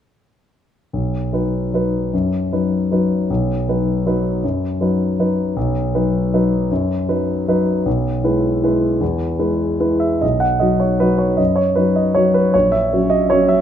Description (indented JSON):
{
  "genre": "classical, piano waltz",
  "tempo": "139-165 BPM",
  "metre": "3/4",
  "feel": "rubato",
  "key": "B major",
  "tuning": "A4 = 441 Hz",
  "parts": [
    { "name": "warm concert grand piano", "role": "solo", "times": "0.9-13.6 s", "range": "A#1 to F#5", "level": "-15 LUFS", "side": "equal", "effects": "none" }
  ],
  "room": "wet recital hall reverb, RT60 1.6 s",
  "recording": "close, detailed microphones",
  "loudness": "-15 LUFS",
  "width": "side -9 dB against mid",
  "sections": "0.9-10.2 A section; 10.2-13.6 B section",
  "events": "none",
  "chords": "0.9 B; 7.9 E/B; 10.2 B; 12.5 F#7/A#"
}